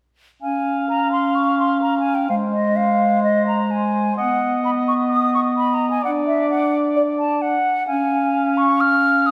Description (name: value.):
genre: cinematic.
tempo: 129 BPM.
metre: 4/4.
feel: straight.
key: unclear.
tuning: A4 = 440 Hz.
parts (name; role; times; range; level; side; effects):
concert flute; second line; 0.4-9.3 s; D5 to F6; -22 LUFS; equal; none.
mellow cor anglais; second line; 0.4-9.3 s; C5 to F5; -26 LUFS; equal; none.
warm clarinet; second line; 0.4-9.3 s; Ab3 to D4; -23 LUFS; equal; none.
room: wet scoring stage reverb, RT60 1.8 s.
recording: none.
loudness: -19 LUFS.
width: mono.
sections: 0.4-9.3 A section.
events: none.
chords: 0.4 Db; 2.3 Ab; 4.2 Cb; 6.0 N.C.; 7.9 Db.